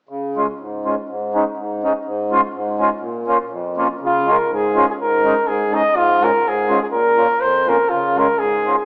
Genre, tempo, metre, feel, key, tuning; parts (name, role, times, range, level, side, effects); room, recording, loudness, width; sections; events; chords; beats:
alpine folk, alpine dance band; 123 BPM; 2/4; swing 55% on 8ths; Db major; A4 = 441 Hz
mellow accordion; accompaniment; 0.1-8.8 s; F2 to F4; -21 LUFS; equal
warm flugelhorn; melody; 4.1-8.8 s; F4 to Eb5; -18 LUFS; equal
wet recital hall reverb, RT60 1.5 s; small speaker sound; -18 LUFS; mono
0.1-4.0 A section; 4.0-8.8 B section
0.1 Db; 1.1 Absus4; 2.0 Db/Ab; 3.0 Bbm; 4.0 Db; 5.0 Absus4; 5.9 Db/Ab; 6.9 Bbm; 7.9 Db
| 0.09 0.58 | 1.07 1.56 | 2.04 2.53 | 3.02 3.51 | 4.00 4.49 | 4.98 5.46 | 5.95 6.43 | 6.91 7.40 | 7.89 8.39